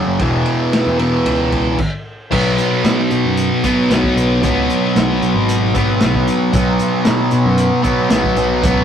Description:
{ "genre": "psychedelic rock", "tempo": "114 BPM", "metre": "4/4", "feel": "straight", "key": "unclear", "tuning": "A4 = 440 Hz", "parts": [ { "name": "fuzz guitar", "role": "riff", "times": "0.0-8.8 s", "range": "E2 to B3", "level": "-14 LUFS", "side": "equal", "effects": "distortion, phaser" }, { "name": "picked electric bass", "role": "bass", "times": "0.0-8.8 s", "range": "E1 to B2", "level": "-20 LUFS", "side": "equal", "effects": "none" }, { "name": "vintage drum kit", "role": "drums", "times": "0.2-8.8 s", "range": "crash cymbal, hi-hat, kick drum, ride cymbal, snare drum", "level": "-20 LUFS", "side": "equal", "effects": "none" } ], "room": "moderate small room ambience, RT60 0.5 s", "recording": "rough rehearsal-room recording", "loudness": "-13 LUFS", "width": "side -8 dB against mid", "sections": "0.0-2.3 A section; 2.3-8.8 B section", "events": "stop 1.8-2.3", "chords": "0.2 E5; 2.3 B5" }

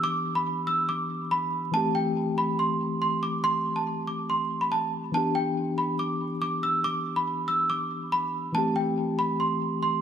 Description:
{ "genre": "hip hop", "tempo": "141 BPM", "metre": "4/4", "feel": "half-time", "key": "E minor", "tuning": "A4 = 440 Hz", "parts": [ { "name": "worn celesta", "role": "melody", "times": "0.0-10.0 s", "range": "G5 to E6", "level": "-26 LUFS", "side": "right 2 dB", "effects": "none" }, { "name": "mellow tine electric piano", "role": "accompaniment", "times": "0.0-10.0 s", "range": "E3 to G4", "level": "-30 LUFS", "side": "left 2 dB", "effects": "medium stereo tremolo" } ], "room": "light reverb, studio reverb", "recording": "vinyl crackle", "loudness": "-24 LUFS", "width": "side -8 dB against mid", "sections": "0.0-10.0 A section", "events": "none", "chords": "0.0 Em7; 1.7 Am7; 5.1 Em7; 8.5 Am7" }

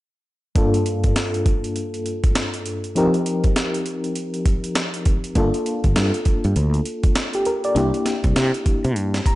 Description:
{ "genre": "R&B, new jack swing", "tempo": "100 BPM", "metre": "4/4", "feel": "swing 61% on 16ths", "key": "G minor", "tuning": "A4 = 440 Hz", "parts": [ { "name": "FM electric piano with tremolo", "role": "accompaniment", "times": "0.6-9.4 s", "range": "G2 to Bb5", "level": "-22 LUFS", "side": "left 1 dB", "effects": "none" }, { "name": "breakbeat sampler-style drum kit", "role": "drums", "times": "0.6-9.4 s", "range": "hi-hat, kick drum, snare drum", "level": "-21 LUFS", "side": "equal", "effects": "none" }, { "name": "fretless electric bass", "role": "bass", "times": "5.4-9.2 s", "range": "G1 to C3", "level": "-20 LUFS", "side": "equal", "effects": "none" } ], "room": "light reverb, digital ambience", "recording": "nothing above 10.7 kHz", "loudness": "-18 LUFS", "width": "side -17 dB against mid", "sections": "0.6-9.4 A section", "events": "FM electric piano fill 9.0-9.4", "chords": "0.6 Gm7; 3.0 F7sus4; 5.4 Gm7; 7.8 C7" }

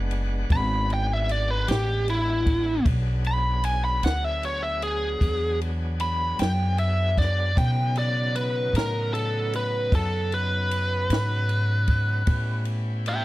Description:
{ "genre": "slow blues", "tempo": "51 BPM (dotted quarters)", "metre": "12/8", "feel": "straight", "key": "E mixolydian", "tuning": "A4 = 440 Hz", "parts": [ { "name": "bright tonewheel organ", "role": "sustained chords", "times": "0.0-13.2 s", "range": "C#3 to F#5", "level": "-36 LUFS", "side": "equal", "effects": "slow rotary speaker, overdrive" }, { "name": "upright bass", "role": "bass", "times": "0.0-13.2 s", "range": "F#1 to B2", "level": "-25 LUFS", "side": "equal", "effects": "none" }, { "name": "compact cocktail drum kit", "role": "drums", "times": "0.1-13.2 s", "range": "kick drum, ride cymbal, snare drum", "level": "-28 LUFS", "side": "equal", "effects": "none" }, { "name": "biting lead guitar", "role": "melody", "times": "0.5-13.2 s", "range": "E4 to B5", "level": "-26 LUFS", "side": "equal", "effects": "overdrive, slapback echo" } ], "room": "little or no reverb", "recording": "dry, close 1970s-style studio recording", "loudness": "-22 LUFS", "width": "side -17 dB against mid", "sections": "0.0-13.2 A section", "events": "lead electric guitar solo 0.0-13.2", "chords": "0.0 E9; 7.6 B9; 12.3 A9" }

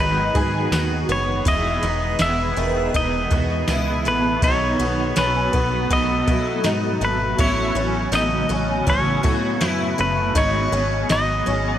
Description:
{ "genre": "dream pop", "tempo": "81 BPM", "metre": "4/4", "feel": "straight", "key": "A lydian", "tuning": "A4 = 441 Hz", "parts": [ { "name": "pedal steel guitar", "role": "melody", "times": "0.0-11.8 s", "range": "B4 to E5", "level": "-23 LUFS", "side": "left 1 dB", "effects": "tape echo" }, { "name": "electric guitar at the edge of break-up", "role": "accompaniment", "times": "0.0-11.8 s", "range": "E2 to A4", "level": "-29 LUFS", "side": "right 4 dB", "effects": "tremolo, analog chorus" }, { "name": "granular cloud pad", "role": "sustained chords", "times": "0.0-11.8 s", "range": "B2 to A4", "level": "-26 LUFS", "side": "equal", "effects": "built-in reverb, tremolo" }, { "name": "picked twelve-string acoustic guitar", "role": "arpeggios", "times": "0.0-11.8 s", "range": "D#3 to G#4", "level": "-26 LUFS", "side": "left 2 dB", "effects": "ensemble chorus, tape echo" }, { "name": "plucky analog bass", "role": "bass", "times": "0.0-11.8 s", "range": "E1 to B2", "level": "-25 LUFS", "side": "equal", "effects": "none" }, { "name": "soft vintage rhythm box", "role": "drums", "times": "0.3-11.6 s", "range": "kick drum, ride cymbal, snare drum, tambourine", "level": "-26 LUFS", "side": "equal", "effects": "none" }, { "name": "backwards swelling texture", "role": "texture", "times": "1.9-2.6, 10.2-10.7 s", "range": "F#4 to B4", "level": "-33 LUFS", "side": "right 4 dB", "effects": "built-in reverb, tape echo" } ], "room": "light reverb, digital ambience", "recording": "none", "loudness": "-18 LUFS", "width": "side -11 dB against mid", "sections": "0.0-11.8 A section", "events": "none", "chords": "0.0 G#m7; 1.5 Emaj7; 4.4 B7; 7.4 A69; 10.4 G#m7" }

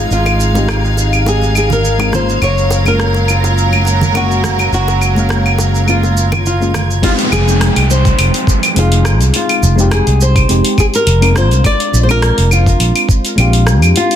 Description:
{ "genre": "sunset chillout", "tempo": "104 BPM", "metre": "4/4", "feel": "swing 54% on 16ths", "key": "unclear", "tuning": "A4 = 440 Hz", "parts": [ { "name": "flamenco guitar", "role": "melody", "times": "0.0-14.2 s", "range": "F4 to D5", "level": "-18 LUFS", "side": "left 1 dB", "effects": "digital delay" }, { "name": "mellow FM electric piano", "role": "accompaniment", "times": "0.0-14.2 s", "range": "Ab3 to G5", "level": "-19 LUFS", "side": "moving between left 7 dB and equal", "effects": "chorus, auto-pan, cassette tape, ping-pong delay" }, { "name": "warm studio string section", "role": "sustained chords", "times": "0.0-7.0 s", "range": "Gb3 to F5", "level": "-20 LUFS", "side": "right 2 dB", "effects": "none" }, { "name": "fretless electric bass", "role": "bass", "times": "0.0-13.9 s", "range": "F1 to F2", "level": "-12 LUFS", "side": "equal", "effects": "none" }, { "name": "drifting glass-harmonics texture", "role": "texture", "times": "0.0-7.0 s", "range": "Ab6", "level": "-29 LUFS", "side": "right 4 dB", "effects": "chorus, built-in reverb" }, { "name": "deep house drum kit", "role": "drums", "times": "0.1-14.2 s", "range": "claves, hi-hat, rim click, shaker", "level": "-18 LUFS", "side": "equal", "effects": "soft clipping on snare" }, { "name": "bongos and congas", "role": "percussion", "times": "0.3-6.9 s", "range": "none", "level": "-23 LUFS", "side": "right 2 dB", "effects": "none" }, { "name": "electronic kick drum", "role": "drums", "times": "7.0-13.2 s", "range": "none", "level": "-12 LUFS", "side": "equal", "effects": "overdrive" }, { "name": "downlifter", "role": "sound effects", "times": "7.0-11.6 s", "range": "none", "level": "-21 LUFS", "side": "right 2 dB", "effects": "none" } ], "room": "light reverb", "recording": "dense, heavily limited modern master", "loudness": "-10 LUFS", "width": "side -10 dB against mid", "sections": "0.0-7.0 A section; 7.0-14.2 B section", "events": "none", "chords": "0.0 Fm9/Ab; 2.4 Gbmaj7; 7.0 Fm9" }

